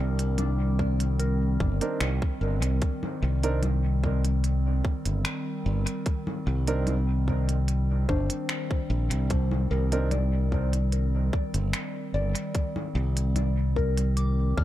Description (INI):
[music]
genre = ambient dub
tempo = 74 BPM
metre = 4/4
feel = straight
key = C minor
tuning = A4 = 438 Hz
[part]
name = warbly tape-like pad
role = sustained chords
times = 0.0-14.6 s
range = Eb3 to Bb4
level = -34 LUFS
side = equal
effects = chorus, built-in reverb
[part]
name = soft synth bell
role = arpeggios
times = 0.0-14.6 s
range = D4 to F6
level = -36 LUFS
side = left 4 dB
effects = chorus, phaser, tape echo
[part]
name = modern bright fingered electric bass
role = bass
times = 0.0-14.6 s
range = G1 to Eb2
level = -24 LUFS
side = equal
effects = none
[part]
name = organic electronic drum kit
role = drums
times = 0.2-14.3 s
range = congas, finger snaps, hi-hat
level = -35 LUFS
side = equal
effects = dub echo
[part]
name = electronic kick drum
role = drums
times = 0.8-14.6 s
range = none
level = -28 LUFS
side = equal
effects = none
[part]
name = dark upright piano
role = stabs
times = 1.8-10.1 s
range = C4 to Bb4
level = -34 LUFS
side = right 4 dB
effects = dub echo
[sound]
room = little or no reverb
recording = echo-heavy mix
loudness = -24 LUFS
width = side -14 dB against mid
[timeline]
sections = 0.0-14.6 A section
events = none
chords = 0.0 Cm9